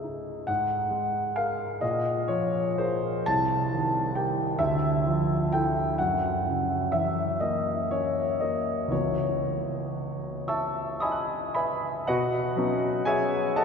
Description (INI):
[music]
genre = classical, impressionist solo piano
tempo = 38-46 BPM (dotted quarters)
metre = 6/8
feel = rubato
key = C# minor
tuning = A4 = 440 Hz
[part]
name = clear concert grand piano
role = solo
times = 0.0-13.6 s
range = C2 to F#6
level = -25 LUFS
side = equal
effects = none
[sound]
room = wet cathedral reverb, RT60 6.6 s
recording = recorded in a church or concert hall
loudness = -25 LUFS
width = side -6 dB against mid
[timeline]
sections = 0.0-12.1 A section; 12.1-13.6 B section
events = none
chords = 0.5 G#sus2; 1.8 A#5; 3.3 Cm7; 4.6 Dmadd9; 6.0 F#7; 8.9 C#m11; 12.1 Badd9